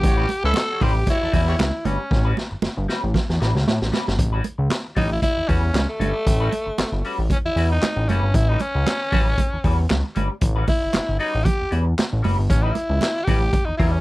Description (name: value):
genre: funk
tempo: 116 BPM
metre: 4/4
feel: swing 56% on 16ths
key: A mixolydian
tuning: A4 = 440 Hz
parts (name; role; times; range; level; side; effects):
- breathy tenor saxophone; melody; 0.0-14.0 s; A3 to A4; -24 LUFS; equal; none
- clear horn section; second line; 0.0-1.5 s; F#3 to E5; -29 LUFS; equal; none
- semi-hollow electric guitar; accompaniment; 0.0-14.0 s; G3 to B4; -30 LUFS; left 2 dB; wah
- fat analog bass; bass; 0.0-14.0 s; F#1 to A2; -21 LUFS; equal; none
- raw garage drum kit; drums; 0.0-13.9 s; handclaps, hi-hat, kick drum, snare drum; -23 LUFS; equal; none
- congas; percussion; 0.3-13.7 s; none; -27 LUFS; right 6 dB; none
room: little or no reverb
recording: dry, close 1970s-style studio recording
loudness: -18 LUFS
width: side -19 dB against mid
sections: 0.0-4.2 A section; 4.2-14.0 B section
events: drum fill 2.1-4.2; tenor saxophone solo 4.2-14.0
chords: 0.0 A13